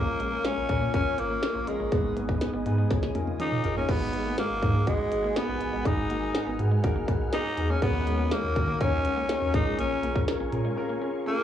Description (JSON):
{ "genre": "1980s-style pop", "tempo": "122 BPM", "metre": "4/4", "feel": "straight", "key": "unclear", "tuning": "A4 = 439 Hz", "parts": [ { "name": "raspy tenor saxophone", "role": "melody", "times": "0.0-11.4 s", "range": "Ab3 to Eb4", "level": "-29 LUFS", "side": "equal", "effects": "cassette tape, tape echo" }, { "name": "dark grand piano", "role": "accompaniment", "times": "0.0-11.4 s", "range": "Ab2 to Db5", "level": "-32 LUFS", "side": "left 3 dB", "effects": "cassette tape" }, { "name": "soft string machine", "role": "sustained chords", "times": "0.0-11.4 s", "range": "Ab4 to F6", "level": "-39 LUFS", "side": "equal", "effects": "phaser, ensemble chorus, cassette tape" }, { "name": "round analog bass", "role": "bass", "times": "0.0-10.7 s", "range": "Ab1 to Eb3", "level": "-30 LUFS", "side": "equal", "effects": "none" }, { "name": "electric guitar at the edge of break-up", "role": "riff", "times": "0.1-11.4 s", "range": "Ab3 to Db4", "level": "-38 LUFS", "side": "right 4 dB", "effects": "lush chorus, cassette tape, tape echo" }, { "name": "minimal click drum kit", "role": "drums", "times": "0.2-10.6 s", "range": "crash cymbal, hi-hat, kick drum, snare drum, toms", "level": "-28 LUFS", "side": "equal", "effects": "overdrive" } ], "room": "moderate small room reverb, RT60 0.6 s", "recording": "home recording on cassette, small room reverb", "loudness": "-24 LUFS", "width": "side -10 dB against mid", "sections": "0.0-3.9 A section; 3.9-11.4 B section", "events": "drum fill 2.9-3.9", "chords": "0.0 Bbm; 1.9 Abm; 2.9 Dbadd9; 3.9 Abm7; 7.8 Ebm7; 9.5 Bbm7" }